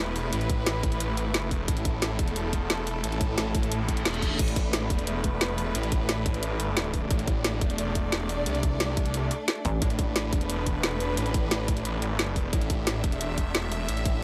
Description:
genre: dark technical drum and bass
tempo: 177 BPM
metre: 4/4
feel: straight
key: unclear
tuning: A4 = 440 Hz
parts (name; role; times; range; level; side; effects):
- rich studio string section; sustained chords; 0.0-14.2 s; A3 to E5; -35 LUFS; equal; sidechain pumping
- snarling distorted saw bass; bass; 0.0-14.2 s; E1 to C2; -32 LUFS; equal; distortion, overdrive, sidechain pumping
- drum and bass drum kit; drums; 0.2-14.1 s; crash cymbal, hi-hat, snare drum; -32 LUFS; equal; none
- electronic kick drum; drums; 0.5-14.1 s; none; -30 LUFS; equal; none
- reverse cymbal; sound effects; 3.9-4.4 s; none; -36 LUFS; equal; none
- pulsing pluck wobble bass; bass; 9.6-9.8 s; A1; -28 LUFS; equal; chorus
room: light reverb, digital ambience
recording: none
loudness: -27 LUFS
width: mono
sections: 0.0-14.2 A section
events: reverse cymbal 3.9-4.4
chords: 0.0 Asus2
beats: | 0.33 0.67 1.00 1.34 | 1.68 2.02 2.36 2.70 | 3.04 3.38 3.72 4.05 | 4.39 4.73 5.07 5.41 | 5.75 6.09 6.43 6.77 | 7.11 7.44 7.78 8.12 | 8.46 8.80 9.14 9.48 | 9.82 10.16 10.49 10.83 | 11.17 11.51 11.85 12.19 | 12.53 12.87 13.21 13.55 | 13.88 14.22

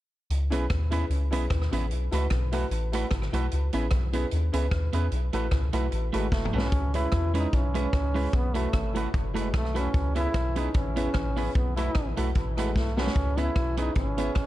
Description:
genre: ska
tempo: 149 BPM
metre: 4/4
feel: swing 54% on 8ths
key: C# minor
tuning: A4 = 445 Hz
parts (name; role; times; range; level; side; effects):
- soft dub sub bass; bass; 0.3-14.5 s; F#1 to E2; -28 LUFS; equal; none
- vintage drum kit; drums; 0.3-14.5 s; hi-hat, kick drum, rim click, snare drum, toms; -29 LUFS; equal; none
- electric guitar at the edge of break-up; accompaniment; 0.5-14.3 s; G#3 to B4; -34 LUFS; right 6 dB; none
- clear upright piano; stabs; 0.5-14.3 s; C#4 to B4; -34 LUFS; left 3 dB; dub echo
- warm trombone; melody; 6.2-14.5 s; G#3 to E4; -32 LUFS; right 1 dB; dub echo
room: light reverb, studio reverb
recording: dark, warm production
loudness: -24 LUFS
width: side -15 dB against mid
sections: 0.3-6.7 A section; 6.7-14.5 B section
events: drum fill 6.3-6.7, 12.8-13.2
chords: 0.3 C#m7; 1.9 B7sus4; 3.5 C#m7; 5.1 B7sus4; 6.7 C#m7; 8.3 B7sus4; 9.9 C#m7; 11.6 B7sus4; 13.2 C#m7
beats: | 0.31 0.71 1.11 1.51 | 1.91 2.31 2.71 3.11 | 3.52 3.92 4.32 4.72 | 5.12 5.52 5.92 6.33 | 6.73 7.13 7.53 7.93 | 8.34 8.74 9.14 9.54 | 9.94 10.35 10.75 11.15 | 11.55 11.95 12.35 12.76 | 13.16 13.56 13.96 14.36

